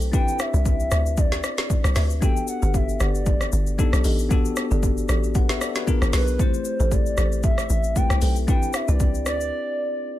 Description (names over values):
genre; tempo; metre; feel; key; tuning
amapiano; 115 BPM; 4/4; swing 55% on 16ths; unclear; A4 = 440 Hz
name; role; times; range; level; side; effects
bell-like tine electric piano; accompaniment; 0.0-10.2 s; A3 to F#5; -29 LUFS; left 5 dB; none
folk marimba with medium mallets; stabs; 0.0-9.5 s; E4 to G5; -35 LUFS; right 1 dB; ping-pong delay
hollow log drum bass; bass; 0.0-9.5 s; G1 to D2; -22 LUFS; equal; none
deep house drum kit; drums; 0.0-9.5 s; hi-hat, kick drum, rim click, shaker, snare drum; -23 LUFS; equal; none
hollow clarinet-like synth lead; melody; 0.1-10.2 s; B4 to G5; -29 LUFS; equal; chorus, ping-pong delay
room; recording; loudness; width
little or no reverb; none; -19 LUFS; side -14 dB against mid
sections
0.0-10.2 A section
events
break 9.5-10.2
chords
0.1 Cmaj9; 2.2 Gmaj7; 3.8 B7alt; 4.3 Gmaj13; 5.9 G#dim7; 6.4 Am7; 8.5 Cmaj9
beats
| 0.13 0.66 1.18 1.70 | 2.22 2.74 3.26 3.79 | 4.31 4.83 5.35 5.87 | 6.39 6.92 7.44 7.96 | 8.48 9.00 9.52 10.05